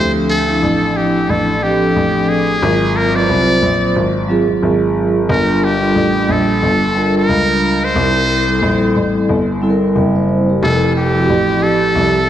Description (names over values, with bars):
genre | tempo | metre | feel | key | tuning
hip hop, jazz-hop | 90 BPM | 4/4 | swing 58% on 16ths | D minor | A4 = 436 Hz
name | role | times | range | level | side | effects
trumpet with metal mute | melody | 0.0-12.3 s | G4 to D5 | -17 LUFS | equal | diffuse ambient delay
vibraphone with soft mallets | accompaniment | 0.0-12.2 s | F3 to G5 | -15 LUFS | right 1 dB | none
warm grand piano | bass | 0.0-12.3 s | F1 to D2 | -18 LUFS | left 1 dB | none
room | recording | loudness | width
moderate lush hall reverb, RT60 2.9 s | dreamy mix soaked in reverb | -12 LUFS | side -11 dB against mid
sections
0.0-12.3 A section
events
none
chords
0.0 Dm7; 2.6 G#13; 5.3 Gm7; 8.0 C7; 10.6 Fmaj7